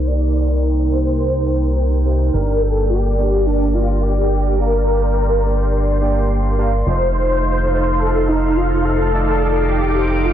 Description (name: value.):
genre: synthwave.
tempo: 106 BPM.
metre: 4/4.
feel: straight.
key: G minor.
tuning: A4 = 440 Hz.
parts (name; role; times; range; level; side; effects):
wide unison lead; melody; 0.0-10.3 s; D4 to D5; -20 LUFS; equal; ensemble chorus, ping-pong delay.
string machine, full ensemble; sustained chords; 0.0-10.3 s; Eb4 to D6; -22 LUFS; equal; ensemble chorus.
analog synth brass; stabs; 0.0-10.3 s; A3 to F5; -25 LUFS; right 3 dB; chorus, ping-pong delay.
chorused synth bass; bass; 0.0-10.3 s; F1 to C2; -18 LUFS; equal; none.
room: light reverb.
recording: dense, heavily limited modern master, low-pass filter.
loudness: -15 LUFS.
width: side -10 dB against mid.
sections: 0.0-10.3 A section.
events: filter sweep on string machine 0.0-10.3; filter sweep on analog polysynth 0.0-10.3; filter sweep 0.0-10.3.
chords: 0.0 Cm7; 2.3 Gm; 6.9 F7.